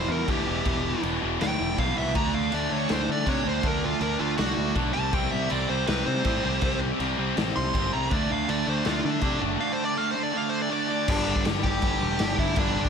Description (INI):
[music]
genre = punk rock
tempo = 161 BPM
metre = 4/4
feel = straight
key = G major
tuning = A4 = 440 Hz
[part]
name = dark smooth lead guitar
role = melody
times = 0.0-12.9 s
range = D4 to C6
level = -30 LUFS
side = right 2 dB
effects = overdrive
[part]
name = overdriven electric guitar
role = riff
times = 0.0-12.9 s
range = E2 to D4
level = -30 LUFS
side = right 14 dB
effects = none
[part]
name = tight distorted guitar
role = riff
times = 0.0-12.9 s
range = E2 to D4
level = -30 LUFS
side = left 17 dB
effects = distortion
[part]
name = growling picked electric bass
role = bass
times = 0.0-12.9 s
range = E1 to D3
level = -30 LUFS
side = left 1 dB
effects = overdrive
[part]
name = raw garage drum kit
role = drums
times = 0.3-12.9 s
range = crash cymbal, kick drum, snare drum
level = -29 LUFS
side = left 1 dB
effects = none
[sound]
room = light reverb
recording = faint mains hum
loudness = -23 LUFS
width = side -6 dB against mid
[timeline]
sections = 0.0-11.1 A section; 11.1-12.9 B section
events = half time 0.0-11.1; lead electric guitar solo 0.0-11.1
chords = 0.0 Em; 2.1 D5; 4.9 C5; 8.1 D5; 11.1 G5